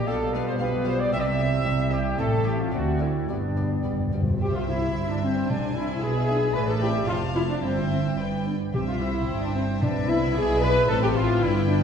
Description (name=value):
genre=quick classical-period movement for symphony orchestra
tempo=111 BPM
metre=2/4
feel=rubato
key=C major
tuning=A4 = 444 Hz
part: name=warm studio violin section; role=melody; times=0.0-11.8 s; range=D5 to A5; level=-38 LUFS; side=left 5 dB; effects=none
part: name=bright concert flute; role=second line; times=0.0-11.8 s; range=C5 to B5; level=-35 LUFS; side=equal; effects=none
part: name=rich chamber violin section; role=second line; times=0.0-11.8 s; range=B3 to G5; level=-35 LUFS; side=left 2 dB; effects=none
part: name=warm clarinet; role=second line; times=0.0-11.8 s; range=B3 to B4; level=-32 LUFS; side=left 3 dB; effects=none
part: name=warm bassoon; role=accompaniment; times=0.0-4.1 s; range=G3 to A3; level=-34 LUFS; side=right 5 dB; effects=none
part: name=warm studio viola section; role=accompaniment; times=0.0-11.8 s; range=G3 to B4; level=-29 LUFS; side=left 1 dB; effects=none
part: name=dark French horn section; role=sustained chords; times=0.0-11.8 s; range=G3 to F4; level=-33 LUFS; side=left 4 dB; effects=none
part: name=mellow trumpet section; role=stabs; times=0.0-3.8 s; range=D4 to E5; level=-28 LUFS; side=right 1 dB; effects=none
part: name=dark studio double bass section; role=bass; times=0.0-11.8 s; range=F1 to D2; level=-29 LUFS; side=right 2 dB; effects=none
part: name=warm studio cello section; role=bass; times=0.0-11.8 s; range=D2 to C3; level=-29 LUFS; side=right 2 dB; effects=none
part: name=timpani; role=percussion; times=3.3-6.2, 8.7-10.6 s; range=G2 to C3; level=-30 LUFS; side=left 1 dB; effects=none
room=wet scoring stage reverb, RT60 1.9 s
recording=heard from further back in the room, nothing above 10.4 kHz, faint mains hum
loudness=-22 LUFS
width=side -7 dB against mid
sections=0.0-4.4 A section; 4.4-11.8 B section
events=timpani fill 3.3-4.4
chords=0.1 G7/B; 1.1 C; 2.2 Am; 2.7 D7; 3.3 G; 4.4 C; 5.5 E7/C; 6.6 Am; 7.1 F; 7.6 C/G; 8.2 G; 8.7 C; 9.8 E5/C; 10.9 Am